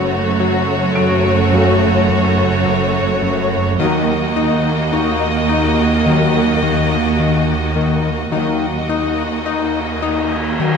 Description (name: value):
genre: cinematic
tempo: 53 BPM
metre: 4/4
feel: straight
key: unclear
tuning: A4 = 440 Hz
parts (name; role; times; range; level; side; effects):
- rich chamber violin section; melody; 0.0-10.8 s; C#5 to D#5; -22 LUFS; left 2 dB; none
- rich chamber violin section; second line; 0.0-10.8 s; F#4; -24 LUFS; left 1 dB; none
- warm symphonic viola section; accompaniment; 0.0-10.8 s; A3 to A#3; -21 LUFS; right 4 dB; none
- fat analog bass; riff; 0.0-10.8 s; F#2 to D#4; -20 LUFS; left 7 dB; none
- rich chamber cello section; bass; 0.0-10.8 s; D#2 to F#2; -21 LUFS; right 4 dB; none
- rich chamber double bass section; bass; 0.0-10.8 s; F#1 to D#2; -22 LUFS; right 4 dB; none
- felt-muted upright piano; texture; 0.0-10.8 s; C#6 to D7; -33 LUFS; equal; none
- mellow French horn section; sustained chords; 1.5-10.8 s; A3 to F#4; -27 LUFS; left 5 dB; none
- warm trombone section; sustained chords; 1.5-10.8 s; C#3 to F#3; -25 LUFS; right 3 dB; none
- reverse cymbal; sound effects; 9.2-10.8 s; none; -26 LUFS; equal; none
room: wet scoring stage reverb, RT60 1.6 s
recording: lossy compression artefacts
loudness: -14 LUFS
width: side -6 dB against mid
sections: 0.0-10.8 A section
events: reverse cymbal 9.2-10.8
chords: 0.0 F#m; 3.8 D#m